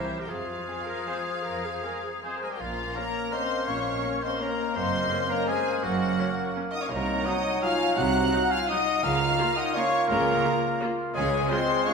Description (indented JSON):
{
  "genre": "classical, orchestral ballroom waltz",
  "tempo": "146-184 BPM",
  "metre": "3/4",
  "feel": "rubato",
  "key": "Bb minor",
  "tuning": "A4 = 440 Hz",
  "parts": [
    { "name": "clear chamber violin section", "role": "melody", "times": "0.0-11.9 s", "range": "E5 to Gb6", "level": "-32 LUFS", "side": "left 3 dB", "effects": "none" },
    { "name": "clear clarinet", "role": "second line", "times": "0.0-11.9 s", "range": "Db4 to G4", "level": "-37 LUFS", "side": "left 2 dB", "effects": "none" },
    { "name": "mellow hollow silver concert flute", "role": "second line", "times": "0.0-11.9 s", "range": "Bb4 to Bb5", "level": "-34 LUFS", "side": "equal", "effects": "none" },
    { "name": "warm oboe", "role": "second line", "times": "0.0-11.9 s", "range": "F4 to Gb5", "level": "-33 LUFS", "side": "left 1 dB", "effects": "none" },
    { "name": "rich chamber viola section", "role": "accompaniment", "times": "0.0-11.9 s", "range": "Gb3 to C5", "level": "-37 LUFS", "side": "right 1 dB", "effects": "none" },
    { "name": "dark French horn section", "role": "sustained chords", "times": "0.0-11.9 s", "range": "F3 to Gb4", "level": "-32 LUFS", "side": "left 4 dB", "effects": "none" },
    { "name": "warm trumpet section", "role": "stabs", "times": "0.0-2.4 s", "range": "Ab4", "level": "-40 LUFS", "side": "right 1 dB", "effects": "none" },
    { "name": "clear chamber double bass section", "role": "bass", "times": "0.0-11.4 s", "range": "Gb1 to F2", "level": "-36 LUFS", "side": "right 4 dB", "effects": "none" },
    { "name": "rich studio cello section", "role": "bass", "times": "0.0-11.4 s", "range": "Gb2 to G3", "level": "-33 LUFS", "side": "right 5 dB", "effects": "none" },
    { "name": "rich chamber violin section", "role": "second line", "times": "0.7-11.9 s", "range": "Ab3 to Gb5", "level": "-34 LUFS", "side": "left 3 dB", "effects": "none" },
    { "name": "warm bassoon", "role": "accompaniment", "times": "2.6-11.9 s", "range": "Gb3 to Bb3", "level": "-31 LUFS", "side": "right 1 dB", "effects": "none" }
  ],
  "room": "wet scoring stage reverb, RT60 1.6 s",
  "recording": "heard from further back in the room",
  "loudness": "-24 LUFS",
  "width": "side -5 dB against mid",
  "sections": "0.0-2.6 A section; 2.6-11.9 B section",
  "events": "none",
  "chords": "0.3 Fm; 2.6 Bbm; 4.8 Gb; 6.9 Cm7b5; 9.0 Bbm/Db; 11.1 Db",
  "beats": "| 0.29 0.67 1.07 | 1.45 1.83 2.23 | 2.59 2.95 3.33 | 3.68 4.04 4.41 | 4.76 5.12 5.49 | 5.84 6.19 6.56 | 6.91 7.27 7.63 | 7.97 8.33 8.70 | 9.04 9.38 9.75 | 10.09 10.43 10.80 | 11.15 11.50 11.87"
}